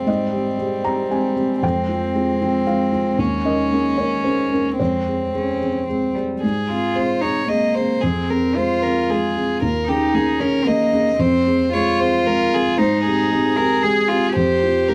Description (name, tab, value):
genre	neoclassical piano and strings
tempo	114 BPM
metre	3/4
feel	rubato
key	Ab major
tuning	A4 = 440 Hz
part	rich violin	melody	0.0-14.9 s	C4 to Eb5	-24 LUFS	equal	none
part	warm cello	second line	0.0-14.9 s	G3 to Bb4	-24 LUFS	equal	none
part	felt-muted upright piano	accompaniment	0.0-14.9 s	Eb2 to Bb5	-23 LUFS	equal	none
room	small room ambience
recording	dry, close 1970s-style studio recording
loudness	-19 LUFS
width	mono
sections	0.0-6.4 A section; 6.4-14.9 A section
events	none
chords	0.1 Abmaj7; 1.6 Fm; 3.2 Eb7sus4; 4.8 Dbmaj7/F; 6.4 Ab; 8.0 Fm; 9.6 Eb7sus4; 11.2 Fm; 12.8 Abmaj7; 14.4 F5